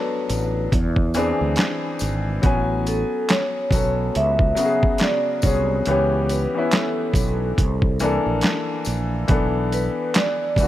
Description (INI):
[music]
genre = lo-fi hip hop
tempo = 70 BPM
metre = 4/4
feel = swing 58% on 16ths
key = unclear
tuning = A4 = 440 Hz
[part]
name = vibraphone with medium mallets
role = melody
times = 0.0-10.7 s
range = A4 to E5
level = -24 LUFS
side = equal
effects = low-pass filter, analog delay
[part]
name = clear upright piano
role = accompaniment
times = 0.0-10.7 s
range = C#3 to G#5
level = -24 LUFS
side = left 2 dB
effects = cassette tape, low-pass filter
[part]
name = fretless electric bass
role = bass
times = 0.3-10.7 s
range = G#1 to E2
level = -23 LUFS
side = right 1 dB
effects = wide subtle chorus
[part]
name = boom bap sampler-style drum kit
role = drums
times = 0.3-10.7 s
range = handclaps, hi-hat, kick drum, snare drum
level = -21 LUFS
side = right 1 dB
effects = overdrive
[part]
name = tambourine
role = percussion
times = 0.3-10.7 s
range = none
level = -36 LUFS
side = left 6 dB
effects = none
[sound]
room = light reverb, small room reverb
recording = none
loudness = -18 LUFS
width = side -13 dB against mid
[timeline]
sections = 0.0-10.7 A section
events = none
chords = 0.0 Bm7; 0.7 Eaug7; 2.4 Amaj13; 5.9 C#m7b5; 7.6 C13; 9.3 Bm11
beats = 0.72 1.57 | 2.43 3.29 4.15 5.00 | 5.86 6.72 7.57 8.43 | 9.29 10.15